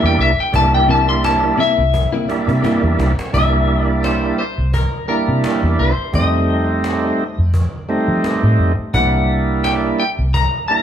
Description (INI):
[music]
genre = straight-eighth soul blues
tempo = 86 BPM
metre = 4/4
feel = swing 55% on 16ths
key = C mixolydian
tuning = A4 = 438 Hz
[part]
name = clean lap steel guitar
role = melody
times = 0.0-10.8 s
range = Bb4 to C6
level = -19 LUFS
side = left 3 dB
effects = none
[part]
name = tonewheel organ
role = accompaniment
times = 0.0-10.8 s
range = G3 to E4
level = -18 LUFS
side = right 3 dB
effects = slow rotary speaker, overdrive
[part]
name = direct-recorded clean electric guitar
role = stabs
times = 0.0-3.0 s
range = C3 to E4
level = -22 LUFS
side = left 3 dB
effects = none
[part]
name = vintage muted fingered electric bass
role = bass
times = 0.0-10.5 s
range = C2 to F3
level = -18 LUFS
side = equal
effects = none
[part]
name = cajon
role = drums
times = 0.2-10.8 s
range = none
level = -27 LUFS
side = equal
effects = none
[sound]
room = moderate large studio reverb, RT60 1.2 s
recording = band playing live in one room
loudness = -14 LUFS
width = side -9 dB against mid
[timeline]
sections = 0.0-3.3 A section; 3.3-10.8 B section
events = electric slide guitar solo 0.0-3.3; drum fill 1.9-3.3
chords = 0.0 C7; 6.1 F7; 8.9 C7